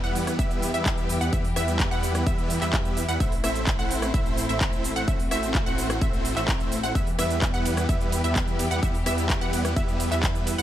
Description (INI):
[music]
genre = EDM, festival progressive house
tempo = 128 BPM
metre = 4/4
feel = straight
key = E minor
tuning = A4 = 440 Hz
[part]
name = rich symphonic string section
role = sustained chords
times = 0.0-10.6 s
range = E3 to G4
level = -33 LUFS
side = left 2 dB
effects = sidechain pumping
[part]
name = wide unison pluck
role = arpeggios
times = 0.0-10.6 s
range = E5 to F#5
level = -32 LUFS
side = right 1 dB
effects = sidechain pumping, dub echo
[part]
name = supersaw chords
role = riff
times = 0.0-10.6 s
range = G3 to F#5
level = -29 LUFS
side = right 1 dB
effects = sidechain pumping, dub echo
[part]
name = wide detuned saw bass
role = bass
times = 0.0-10.6 s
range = A1 to E2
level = -30 LUFS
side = equal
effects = chorus, sidechain pumping
[part]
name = big-room dance drum kit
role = drums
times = 0.0-10.6 s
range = handclaps, hi-hat, ride cymbal, rim click, shaker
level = -31 LUFS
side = equal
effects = none
[part]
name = electronic kick drum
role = drums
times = 0.4-10.3 s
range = none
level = -26 LUFS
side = equal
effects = none
[sound]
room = little or no reverb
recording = none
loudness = -22 LUFS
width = side -12 dB against mid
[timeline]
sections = 0.0-10.6 A section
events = none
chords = 0.0 Em; 3.2 Am; 7.0 Em